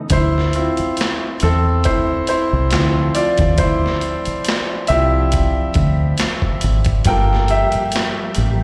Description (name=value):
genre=R&B, neo-soul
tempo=69 BPM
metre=4/4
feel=swing 55% on 16ths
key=unclear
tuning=A4 = 439 Hz
part: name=bright grand piano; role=accompaniment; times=0.0-8.6 s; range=F3 to G5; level=-21 LUFS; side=equal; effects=none
part: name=tonewheel organ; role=sustained chords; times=0.0-0.1, 7.1-8.6 s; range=F3 to G4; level=-31 LUFS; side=equal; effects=chorus vibrato, stopped rotary speaker
part: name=deep dub fingered electric bass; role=bass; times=0.1-8.6 s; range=G1 to E2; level=-19 LUFS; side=equal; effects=none
part: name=boom bap sampler-style drum kit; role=drums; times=0.1-8.6 s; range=handclaps, hi-hat, kick drum, snare drum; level=-23 LUFS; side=equal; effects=none
room=light reverb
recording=live gig heard through the venue's PA, recital hall reverb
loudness=-17 LUFS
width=mono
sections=0.1-8.6 A section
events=grand piano solo 0.1-8.6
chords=0.1 Dm9; 7.1 Gm9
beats=| 0.10 0.97 1.84 2.71 | 3.58 4.45 5.32 6.19 | 7.06 7.93